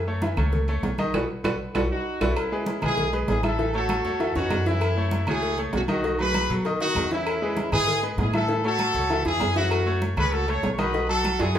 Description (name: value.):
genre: latin, salsa.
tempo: 196 BPM.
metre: 4/4.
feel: straight.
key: E major.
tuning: A4 = 441 Hz.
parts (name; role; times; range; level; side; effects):
upright bass; bass; 0.0-11.6 s; A1 to B2; -28 LUFS; equal; none.
bright baby grand piano; accompaniment; 0.1-11.6 s; D#3 to E5; -28 LUFS; equal; none.
congas; percussion; 0.1-11.6 s; none; -32 LUFS; right 1 dB; none.
cowbell; percussion; 0.2-11.6 s; none; -33 LUFS; left 3 dB; none.
timbales and agogo bells; percussion; 0.2-11.6 s; none; -33 LUFS; right 3 dB; none.
claves; percussion; 0.4-11.4 s; none; -38 LUFS; right 4 dB; none.
clear horn section; melody; 1.9-11.6 s; C#4 to C#5; -26 LUFS; equal; none.
room: wet large studio reverb, RT60 0.9 s.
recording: band playing live in one room.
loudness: -22 LUFS.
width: side -10 dB against mid.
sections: 0.0-2.4 A section; 2.4-11.6 B section.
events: band accent 1.1-2.4; drum fill 1.8-2.4, 11.4.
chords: 0.0 F#m7; 1.1 B7; 2.4 E6; 3.6 A; 4.8 F#m7; 6.0 B7; 7.3 E6; 8.5 A; 9.7 F#m7; 10.9 B7.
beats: 0.22 0.53 0.83 | 1.14 1.45 1.75 2.06 | 2.37 2.67 2.98 3.28 | 3.59 3.90 4.20 4.51 | 4.81 5.12 5.43 5.73 | 6.04 6.34 6.65 6.96 | 7.26 7.57 7.88 8.18 | 8.49 8.79 9.10 9.41 | 9.71 10.02 10.33 10.63 | 10.94 11.24 11.55.